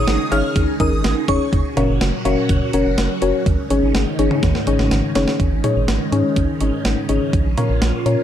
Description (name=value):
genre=synth-pop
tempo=124 BPM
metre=4/4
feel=straight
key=unclear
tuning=A4 = 442 Hz
part: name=shimmering bell with halo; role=second line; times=0.0-1.4 s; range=Db6 to F6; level=-26 LUFS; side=right 1 dB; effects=ensemble chorus, phaser, slapback echo
part: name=phased string machine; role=sustained chords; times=0.0-8.2 s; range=Ab2 to Ab4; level=-23 LUFS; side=right 1 dB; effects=ensemble chorus, phaser
part: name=round analog bass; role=bass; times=0.0-8.2 s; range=F1 to Bb2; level=-21 LUFS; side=right 1 dB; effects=none
part: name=clean 12-bit digital drum machine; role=drums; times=0.1-8.2 s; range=cowbell, hi-hat, kick drum, snare drum, toms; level=-21 LUFS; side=right 1 dB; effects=none
part: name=soft round pluck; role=accompaniment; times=0.3-8.2 s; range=Db4 to Db5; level=-20 LUFS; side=left 3 dB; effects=chorus
room=light reverb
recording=dark, warm production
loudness=-16 LUFS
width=side -10 dB against mid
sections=0.0-5.4 A section; 5.4-8.2 B section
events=drum fill 4.4-5.4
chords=0.0 Absus4; 1.5 Gb; 3.5 Absus4; 7.3 Bbm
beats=0.07 0.56 1.04 | 1.53 2.01 2.49 2.98 | 3.46 3.95 4.43 4.91 | 5.40 5.88 6.37 6.85 | 7.33 7.82